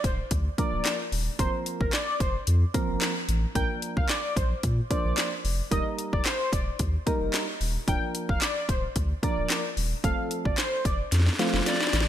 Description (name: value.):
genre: dance-pop.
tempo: 111 BPM.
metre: 4/4.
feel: straight.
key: Bb major.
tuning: A4 = 440 Hz.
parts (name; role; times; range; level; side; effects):
octave-doubled lead; melody; 0.0-11.0 s; Bb4 to G5; -32 LUFS; equal; chorus, sidechain pumping, ping-pong delay.
warm sub bass; bass; 0.0-12.1 s; D1 to Bb2; -27 LUFS; equal; sidechain pumping.
house drum kit; drums; 0.0-12.1 s; handclaps, hi-hat, kick drum, snare drum; -28 LUFS; equal; overdrive, gated reverb.
soft electric-piano-like synth keys; accompaniment; 0.6-11.8 s; F3 to C5; -32 LUFS; right 2 dB; chorus, sidechain pumping.
warm alto saxophone; melody; 11.7-12.1 s; D5; -28 LUFS; left 3 dB; ping-pong delay.
room: light reverb.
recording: bright 1980s-style digital production.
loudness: -24 LUFS.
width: side -11 dB against mid.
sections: 0.0-12.1 A section.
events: drum fill 11.1-12.1.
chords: 0.0 Bb/D; 1.4 Fsus4; 3.6 Bb; 5.7 Eb; 7.9 Bb/D; 10.0 F.